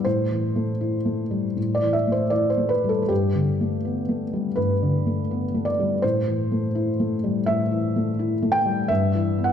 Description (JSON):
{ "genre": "neoclassical minimalist piano", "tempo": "77-85 BPM", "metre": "4/4", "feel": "rubato", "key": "unclear", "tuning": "A4 = 440 Hz", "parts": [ { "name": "felt-muted upright piano", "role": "solo", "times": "0.0-9.5 s", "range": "G2 to G5", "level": "-20 LUFS", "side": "equal", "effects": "none" } ], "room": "wet recital hall reverb, RT60 1.6 s", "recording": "dark, warm production", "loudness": "-21 LUFS", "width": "side -8 dB against mid", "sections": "0.0-9.5 A section", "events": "none", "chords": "0.1 Am7; 3.1 Gadd9; 6.0 Am7; 8.9 Em/G" }